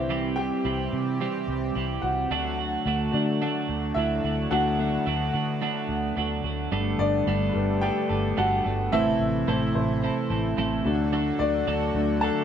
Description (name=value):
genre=pop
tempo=109 BPM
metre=4/4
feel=straight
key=G major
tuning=A4 = 440 Hz
part: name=clear upright piano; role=accompaniment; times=0.0-12.4 s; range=E3 to A5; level=-28 LUFS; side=left 2 dB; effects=none
part: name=chorused pulse-width pad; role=sustained chords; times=0.0-12.4 s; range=C3 to G4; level=-31 LUFS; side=left 2 dB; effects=none
part: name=twelve-string electric guitar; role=riff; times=0.0-12.4 s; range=A2 to A4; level=-28 LUFS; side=right 5 dB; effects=none
part: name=vintage muted fingered electric bass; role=bass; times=0.0-12.3 s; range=G1 to D3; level=-30 LUFS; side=equal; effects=none
room=moderate studio reverb, RT60 0.9 s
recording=band playing live in one room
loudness=-23 LUFS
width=side -8 dB against mid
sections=0.0-6.7 A section; 6.7-12.4 B section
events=upright piano solo 0.0-6.7, 6.7-12.4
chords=0.0 C; 2.3 D; 6.7 Gadd9; 8.9 Am; 10.8 D